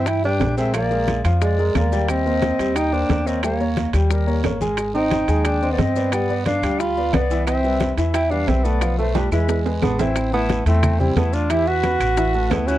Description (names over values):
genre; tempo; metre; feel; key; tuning
Afro-Cuban jazz; 178 BPM; 4/4; straight; unclear; A4 = 440 Hz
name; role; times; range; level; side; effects
breathy tenor saxophone; melody; 0.0-12.8 s; G3 to F#4; -22 LUFS; right 2 dB; none
breathy bright jazz flute; second line; 0.0-12.8 s; C4 to B5; -28 LUFS; left 5 dB; tape echo
warm concert grand piano; accompaniment; 0.0-12.8 s; E3 to F#6; -25 LUFS; left 2 dB; none
upright bass; bass; 0.0-12.8 s; Ab1 to G2; -22 LUFS; equal; none
bongos; percussion; 0.1-12.8 s; none; -30 LUFS; left 6 dB; none
claves; percussion; 0.1-12.7 s; none; -36 LUFS; right 4 dB; none
congas; percussion; 0.1-12.7 s; none; -28 LUFS; left 1 dB; none
guiro; percussion; 0.1-12.8 s; none; -41 LUFS; right 7 dB; none
maracas; percussion; 0.1-12.8 s; none; -41 LUFS; left 11 dB; none
timbales; percussion; 0.1-12.7 s; none; -28 LUFS; right 7 dB; none
room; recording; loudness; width
moderate small room reverb, RT60 0.5 s; cassette tape; -17 LUFS; side -14 dB against mid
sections
0.0-10.2 A section; 10.2-12.8 B section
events
drum fill 9.2-10.2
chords
0.0 Cmaj7; 0.7 Bb7; 2.1 Eb6; 3.4 Eb7; 4.8 Abmaj7; 6.1 G7; 7.5 Cmaj7; 8.8 G13/B; 9.5 E; 10.2 Am9; 11.5 Esus2; 12.2 Asus2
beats
0.07 0.40 | 0.74 1.08 1.42 1.75 | 2.09 2.43 2.76 3.10 | 3.44 3.77 4.11 4.45 | 4.78 5.12 5.45 5.79 | 6.13 6.46 6.80 7.13 | 7.47 7.81 8.14 8.48 | 8.81 9.15 9.49 9.82 | 10.16 10.49 10.83 11.17 | 11.50 11.84 12.17 12.51